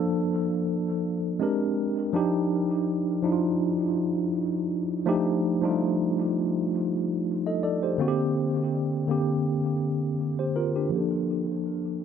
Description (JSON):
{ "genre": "R&B", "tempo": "82 BPM", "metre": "4/4", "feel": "swing 54% on 16ths", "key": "Bb major", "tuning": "A4 = 442 Hz", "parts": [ { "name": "mellow tine electric piano", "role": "solo", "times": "0.0-12.0 s", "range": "D3 to Eb5", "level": "-24 LUFS", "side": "equal", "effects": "medium stereo tremolo, low-pass filter, tape echo" } ], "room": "light reverb", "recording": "dark, warm production", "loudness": "-24 LUFS", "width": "side -8 dB against mid", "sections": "0.0-10.9 A section; 10.9-12.0 B section", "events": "filter sweep on tine electric piano 10.9-12.0", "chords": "0.0 Bbmaj7; 1.4 Bb13; 2.1 Ebmaj9; 5.1 F13; 8.0 Bb69; 10.9 Bbmaj7" }